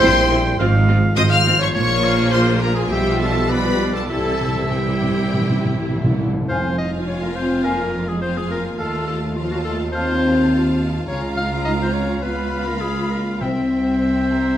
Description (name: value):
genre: quick classical-period movement for symphony orchestra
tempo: 104 BPM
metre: 4/4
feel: straight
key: unclear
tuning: A4 = 440 Hz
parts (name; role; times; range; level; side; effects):
- warm studio violin section; melody; 0.0-14.6 s; G5 to F6; -26 LUFS; left 4 dB; none
- clear clarinet; second line; 0.0-14.6 s; F4 to F5; -26 LUFS; left 2 dB; none
- clear oboe; second line; 0.0-14.6 s; C5 to G5; -28 LUFS; right 1 dB; none
- mellow flute section; second line; 0.0-14.6 s; G4 to Cb6; -28 LUFS; right 1 dB; none
- warm studio violin section; second line; 0.0-14.6 s; G4 to F5; -32 LUFS; left 4 dB; none
- warm studio viola section; accompaniment; 0.0-14.6 s; G3 to F4; -26 LUFS; right 1 dB; none
- dark French horn section; sustained chords; 0.0-14.6 s; E3 to G4; -24 LUFS; left 2 dB; none
- rich studio cello section; bass; 0.0-14.6 s; C2 to C3; -24 LUFS; right 2 dB; none
- rich studio double bass section; bass; 0.0-14.6 s; F1 to Eb2; -25 LUFS; right 2 dB; none
- timpani; percussion; 4.1-7.3, 13.4-14.3 s; F2 to C3; -23 LUFS; equal; none
room: wet recital hall reverb, RT60 1.2 s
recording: none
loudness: -17 LUFS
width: side -11 dB against mid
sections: 0.0-6.5 A section; 6.5-14.6 B section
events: timpani fill 4.1-6.5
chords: 0.0 C7/Bb; 0.6 Fm/Ab; 1.7 Bbm; 2.9 G7/B; 4.1 C; 6.5 Fm; 8.8 F7/Eb; 11.1 Bbm/Db; 12.2 Db7; 13.4 C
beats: 0.02 0.59 1.17 | 1.75 2.33 2.91 3.50 | 4.09 4.70 5.30 5.89 | 6.48 7.07 7.65 8.22 | 8.80 9.38 9.95 10.52 | 11.10 11.66 12.24 12.82 | 13.41 14.01